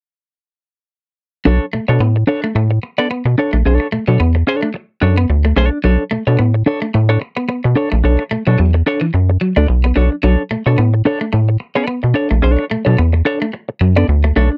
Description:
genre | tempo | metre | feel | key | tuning
funk | 109 BPM | 4/4 | swing 56% on 16ths | B minor | A4 = 440 Hz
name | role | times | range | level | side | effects
clean electric guitar | accompaniment | 1.5-14.6 s | D4 to D5 | -19 LUFS | equal | harmonic tremolo
electric guitar at the edge of break-up | riff | 1.5-14.5 s | E3 to B3 | -22 LUFS | equal | none
rubbery square bass | bass | 1.5-14.5 s | A#1 to B2 | -15 LUFS | equal | none
room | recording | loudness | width
little or no reverb | dark, warm production | -15 LUFS | mono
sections
1.5-14.6 A section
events
none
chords
1.5 Bm9

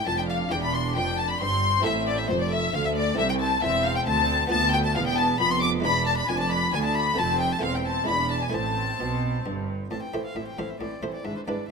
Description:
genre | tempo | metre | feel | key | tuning
classical, baroque-style concerto movement with solo episodes | 134 BPM | 3/4 | straight | A minor from 4.5 s | A4 = 440 Hz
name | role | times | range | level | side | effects
rich chamber violin section | melody | 0.0-11.7 s | B4 to D6 | -29 LUFS | left 6 dB | none
rich violin | melody | 0.0-11.7 s | C5 to D6 | -29 LUFS | left 3 dB | none
warm chamber violin section | second line | 0.0-11.7 s | C4 to D6 | -31 LUFS | left 3 dB | none
buff-stop harpsichord | accompaniment | 0.0-11.7 s | C2 to D5 | -33 LUFS | right 1 dB | none
warm studio viola section | accompaniment | 0.0-11.7 s | E3 to D4 | -32 LUFS | right 2 dB | none
rich chamber cello section | bass | 0.0-11.6 s | C2 to B2 | -31 LUFS | right 3 dB | none
rich chamber double bass section | bass | 0.0-11.6 s | E1 to D2 | -32 LUFS | right 3 dB | none
room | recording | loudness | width
light reverb | close, detailed microphones | -22 LUFS | side -5 dB against mid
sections
0.0-9.9 A section; 9.9-11.7 B section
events
none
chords
0.0 C (rootless); 0.5 C/E; 1.9 Am; 4.5 Bdim; 5.8 E7; 7.2 F; 7.6 Am/E; 8.1 E7; 8.5 Am

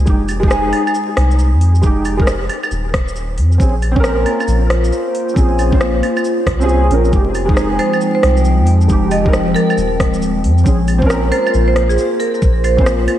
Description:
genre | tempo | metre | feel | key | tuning
future garage | 136 BPM | 4/4 | swing 64% on 16ths | F minor | A4 = 436 Hz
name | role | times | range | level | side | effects
warbly tape-like pad | sustained chords | 0.0-0.1, 4.1-13.2 s | F3 to G5 | -19 LUFS | left 1 dB | chorus, built-in reverb, sidechain pumping
soft dub sub bass | bass | 0.0-13.1 s | Eb1 to F2 | -15 LUFS | equal | sidechain pumping
felt-muted upright piano | accompaniment | 0.1-12.9 s | Ab3 to C5 | -19 LUFS | right 1 dB | ensemble chorus, sidechain pumping, ping-pong delay
electronic kick drum | drums | 0.1-12.8 s | none | -14 LUFS | equal | small room ambience
garage drum kit | drums | 0.1-13.2 s | claves, hi-hat, rim click, shaker | -22 LUFS | equal | small room ambience
marimba with hard mallets | melody | 7.8-12.9 s | Ab4 to Eb5 | -20 LUFS | right 2 dB | tape echo
room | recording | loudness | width
moderate lush hall reverb, RT60 2.0 s | dreamy mix soaked in reverb, vinyl crackle | -12 LUFS | side -12 dB against mid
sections
0.1-13.2 A section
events
none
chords
0.1 Fm7; 3.6 Bbm7; 7.1 Fm9; 10.7 Bbm7

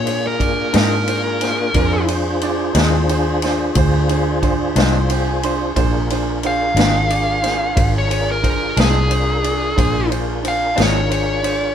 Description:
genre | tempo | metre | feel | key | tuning
slow blues | 60 BPM (dotted quarters) | 12/8 | straight | Bb mixolydian | A4 = 440 Hz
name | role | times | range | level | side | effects
smooth overdriven lead guitar | melody | 0.0-11.7 s | Ab4 to F5 | -20 LUFS | left 1 dB | none
tonewheel organ | sustained chords | 0.0-11.7 s | Bb3 to C5 | -24 LUFS | equal | slow rotary speaker, chorus vibrato
vintage muted fingered electric bass | bass | 0.0-11.7 s | Ab1 to Bb2 | -20 LUFS | equal | none
clear grand piano | accompaniment | 0.1-11.7 s | D4 to C6 | -24 LUFS | right 2 dB | none
vintage drum kit | drums | 0.1-11.6 s | kick drum, ride cymbal, snare drum | -22 LUFS | equal | none
electric guitar through a small old amp | accompaniment | 0.7-11.0 s | Bb2 to D4 | -21 LUFS | left 3 dB | harmonic tremolo
room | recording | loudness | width
light reverb | band playing live in one room | -15 LUFS | side -9 dB against mid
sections
0.0-11.7 A section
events
lead electric guitar solo 0.0-11.7; grand piano fill 4.8-5.8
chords
0.0 Bb9

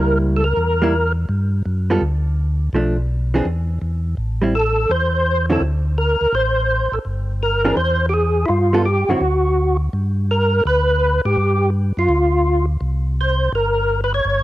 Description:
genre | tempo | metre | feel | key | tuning
jazz | 167 BPM | 4/4 | swing 65% on 8ths | unclear | A4 = 441 Hz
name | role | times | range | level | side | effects
percussive tonewheel organ | melody | 0.0-1.1, 4.6-14.4 s | E4 to C#5 | -18 LUFS | equal | slow rotary speaker, overdrive, chorus vibrato
vintage hollow-body jazz guitar | accompaniment | 0.0-9.2 s | D3 to A4 | -20 LUFS | right 1 dB | cassette tape
mellow tonewheel organ | bass | 0.0-14.4 s | G1 to Ab2 | -19 LUFS | equal | slow rotary speaker
room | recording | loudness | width
light reverb | home recording on cassette | -16 LUFS | side -15 dB against mid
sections
0.0-9.9 A section; 9.9-14.4 A section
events
none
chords
0.0 C#dim7; 1.3 G5; 2.7 Bm7b5; 3.5 N.C.; 4.2 Am; 5.6 D5; 7.1 G5; 7.8 Eaug; 8.5 G9; 9.2 D; 9.9 G7; 12.8 C5

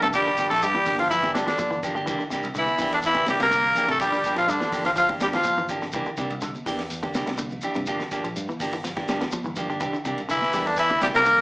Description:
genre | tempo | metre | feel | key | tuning
afrobeat | 124 BPM | 4/4 | straight | C mixolydian | A4 = 440 Hz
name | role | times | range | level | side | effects
raspy tenor saxophone | melody | 0.0-5.7, 10.3-11.4 s | D4 to Bb4 | -21 LUFS | equal | none
brilliant trombone | second line | 0.0-5.7, 10.3-11.4 s | D3 to Bb3 | -30 LUFS | right 1 dB | none
growling baritone saxophone | second line | 0.0-5.7, 10.3-11.4 s | D3 to Bb3 | -30 LUFS | left 1 dB | slapback echo
clean electric guitar | arpeggios | 0.0-11.4 s | C3 to G3 | -34 LUFS | left 1 dB | slapback echo
clean electric guitar | stabs | 0.0-11.2 s | E3 to G4 | -29 LUFS | right 1 dB | slapback echo
fingered electric bass | bass | 0.0-11.4 s | G1 to G2 | -36 LUFS | equal | none
tight funk drum kit | drums | 0.0-11.4 s | hi-hat, kick drum, ride cymbal, snare drum | -35 LUFS | equal | none
congas | percussion | 0.0-11.4 s | none | -36 LUFS | equal | none
shekere | percussion | 0.0-11.4 s | none | -38 LUFS | left 1 dB | none
room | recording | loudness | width
light reverb | live gig heard through the venue's PA, club reverb, small speaker sound | -21 LUFS | side -25 dB against mid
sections
0.0-11.4 A section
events
none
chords
0.1 Gm7; 2.1 C9; 4.0 Gm7; 5.9 C9; 7.9 Gm7; 9.8 C9

